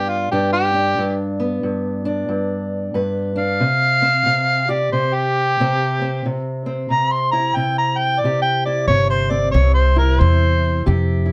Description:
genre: acoustic country blues, solo or duo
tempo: 91 BPM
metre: 4/4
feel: swing 62% on 8ths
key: unclear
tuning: A4 = 441 Hz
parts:
  - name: mellow harmonica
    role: melody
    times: 0.0-10.8 s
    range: F4 to C6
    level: -20 LUFS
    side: equal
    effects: slapback echo
  - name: fingerpicked steel-string acoustic guitar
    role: accompaniment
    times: 0.0-11.3 s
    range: G2 to B4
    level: -24 LUFS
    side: equal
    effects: none
  - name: upright bass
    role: bass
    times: 8.9-11.3 s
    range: G1 to F2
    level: -18 LUFS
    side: equal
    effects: none
room: little or no reverb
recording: close, detailed microphones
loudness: -18 LUFS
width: mono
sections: 0.0-11.3 A section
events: harmonica solo 0.0-11.3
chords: 0.0 G; 3.6 C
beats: 0.32 | 0.98 1.64 2.30 2.96 | 3.62 4.28 4.94 5.60 | 6.26 6.92 7.57 8.23 | 8.89 9.55 10.21 10.86

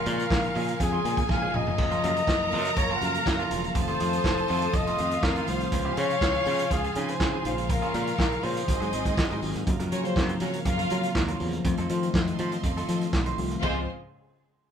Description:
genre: disco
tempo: 122 BPM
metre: 4/4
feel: straight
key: unclear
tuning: A4 = 440 Hz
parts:
  - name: warm flugelhorn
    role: melody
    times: 0.0-9.4 s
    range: Ab4 to Gb5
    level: -30 LUFS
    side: left 2 dB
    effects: none
  - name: warm symphonic violin section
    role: second line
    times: 0.0-13.9 s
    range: Ab3 to Bb5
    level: -31 LUFS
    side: equal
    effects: none
  - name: clean electric guitar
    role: accompaniment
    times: 0.0-13.8 s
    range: Eb3 to C5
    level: -37 LUFS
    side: right 4 dB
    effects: spring reverb
  - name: mellow tine electric piano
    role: accompaniment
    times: 0.0-13.9 s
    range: C3 to Gb4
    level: -33 LUFS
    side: left 2 dB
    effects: phaser
  - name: rich studio string section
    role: sustained chords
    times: 0.0-13.9 s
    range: Db3 to Eb6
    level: -37 LUFS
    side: right 2 dB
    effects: none
  - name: modern bright fingered electric bass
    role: bass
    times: 0.1-13.9 s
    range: Fb1 to Gb3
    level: -31 LUFS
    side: equal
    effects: none
  - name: vintage drum kit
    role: drums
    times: 0.1-13.7 s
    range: crash cymbal, handclaps, hi-hat, kick drum, snare drum, splash cymbal, toms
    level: -29 LUFS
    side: right 1 dB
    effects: none
room: moderate studio ambience, RT60 0.5 s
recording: band playing live in one room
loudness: -24 LUFS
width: side -8 dB against mid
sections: 0.0-9.7 A section; 9.7-13.6 B section; 13.6-14.7 C section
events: drum fill 1.3-1.8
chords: 0.0 Bbm7; 1.8 Gbmaj7; 3.8 F7; 5.7 Dbmaj7; 7.4 Bbm7; 8.7 Ab7; 9.7 Gbmaj7; 11.6 F7; 13.6 Dbmaj7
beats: 0.30 0.80 1.29 | 1.78 2.27 2.77 3.26 | 3.75 4.24 4.74 5.23 | 5.72 6.21 6.71 7.20 | 7.69 8.19 8.68 9.17 | 9.67 10.16 10.65 11.15 | 11.64 12.14 12.63 13.13 | 13.62

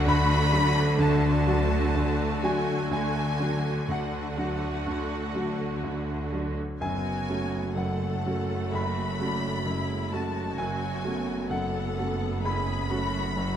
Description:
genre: cinematic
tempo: 63 BPM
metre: 4/4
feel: rubato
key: unclear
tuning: A4 = 440 Hz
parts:
  - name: warm symphonic violin section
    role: melody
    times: 0.0-13.6 s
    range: F#5 to B5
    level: -38 LUFS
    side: left 4 dB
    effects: none
  - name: rich studio violin section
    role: second line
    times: 0.0-13.6 s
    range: F#5 to B5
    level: -35 LUFS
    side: left 4 dB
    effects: none
  - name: bright concert grand piano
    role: accompaniment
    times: 0.0-13.6 s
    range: F#1 to B5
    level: -29 LUFS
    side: left 1 dB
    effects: none
  - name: clear symphonic viola section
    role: accompaniment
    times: 0.0-13.6 s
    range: F#3 to A4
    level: -34 LUFS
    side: right 1 dB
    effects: none
  - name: rich symphonic cello section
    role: bass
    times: 0.0-13.6 s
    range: F#2 to D3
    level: -31 LUFS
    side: equal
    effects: none
  - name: rich symphonic double bass section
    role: bass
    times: 0.0-13.6 s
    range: F#1 to D2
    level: -32 LUFS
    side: right 2 dB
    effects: none
room: light reverb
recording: none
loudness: -25 LUFS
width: side -9 dB against mid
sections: 0.0-13.6 A section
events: none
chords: 0.0 D; 6.8 F#m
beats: 0.07 1.00 1.95 | 2.92 3.90 4.87 5.84 | 6.81 7.76 8.73 9.67 | 10.58 11.50 12.45 13.37

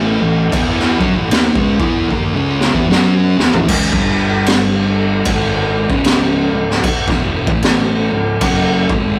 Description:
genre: stoner and doom metal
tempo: 76 BPM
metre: 4/4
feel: swing 61% on 8ths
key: C# minor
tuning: A4 = 440 Hz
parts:
  - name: fuzz guitar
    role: riff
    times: 0.0-9.2 s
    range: C#2 to F#4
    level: -19 LUFS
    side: equal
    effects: distortion
  - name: thick fuzz guitar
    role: riff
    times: 0.0-3.7 s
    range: A2 to F#4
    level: -20 LUFS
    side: equal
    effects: distortion
  - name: fuzz fingered electric bass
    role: bass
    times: 0.0-9.2 s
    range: C#1 to F#2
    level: -25 LUFS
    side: equal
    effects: overdrive, tube saturation
  - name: raw garage drum kit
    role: drums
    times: 0.5-9.0 s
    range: crash cymbal, kick drum, snare drum, toms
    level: -18 LUFS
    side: equal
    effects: none
room: light reverb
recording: rough rehearsal-room recording, warm saturation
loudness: -14 LUFS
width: mono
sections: 0.0-3.7 A section; 3.7-9.2 A section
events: drum fill 2.1-3.7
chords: 0.0 A5; 3.7 C#5; 3.9 G5; 5.3 C#m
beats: | 0.52 1.31 2.10 2.89 | 3.68 4.47 5.26 6.05 | 6.84 7.63 8.42

